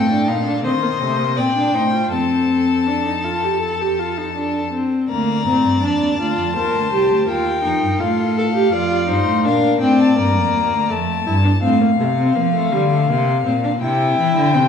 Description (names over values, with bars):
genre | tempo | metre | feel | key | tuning
classical, baroque-style fugue for string quartet | 82 BPM | 4/4 | straight | Bb major | A4 = 441 Hz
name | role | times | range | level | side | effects
warm violin | melody | 0.0-14.7 s | Eb5 to Bb5 | -21 LUFS | left 7 dB | none
clear violin | second line | 0.0-10.9 s | A4 to D5 | -25 LUFS | left 5 dB | none
clear viola | accompaniment | 0.0-14.7 s | G3 to Bb4 | -19 LUFS | equal | none
rich cello | bass | 0.0-14.7 s | C2 to F3 | -21 LUFS | right 2 dB | none
room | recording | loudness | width
wet recital hall reverb, RT60 1.8 s | vinyl crackle | -15 LUFS | side -7 dB against mid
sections
0.0-5.1 A section; 5.1-14.7 B section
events
none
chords
0.0 Dm; 0.6 Cm; 2.1 F; 5.1 Bb/D; 6.6 Cm7; 8.0 F/A; 9.4 Bb; 10.9 F; 12.4 Gm7; 13.8 C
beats
0.64 1.37 | 2.12 2.87 3.61 4.34 | 5.09 5.82 6.56 7.28 | 8.00 8.72 9.45 10.18 | 10.90 11.63 12.36 13.08 | 13.81 14.54